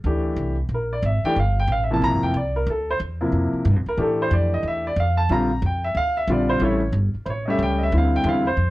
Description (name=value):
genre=jazz piano trio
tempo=183 BPM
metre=4/4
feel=swing 63% on 8ths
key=D minor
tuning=A4 = 441 Hz
part: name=upright bass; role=bass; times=0.0-8.7 s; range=F1 to A2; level=-23 LUFS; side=equal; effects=tube saturation
part: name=warm upright piano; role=melody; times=0.1-8.7 s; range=C3 to Bb5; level=-21 LUFS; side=equal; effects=none
room=light reverb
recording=worn, warbling old tape, cassette tape, warbly pitch drift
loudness=-19 LUFS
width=side -18 dB against mid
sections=0.0-8.7 A section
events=upright piano solo 0.0-8.7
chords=0.0 Gm7; 2.7 Dm7; 5.3 Bb; 6.6 A7; 7.9 Dm7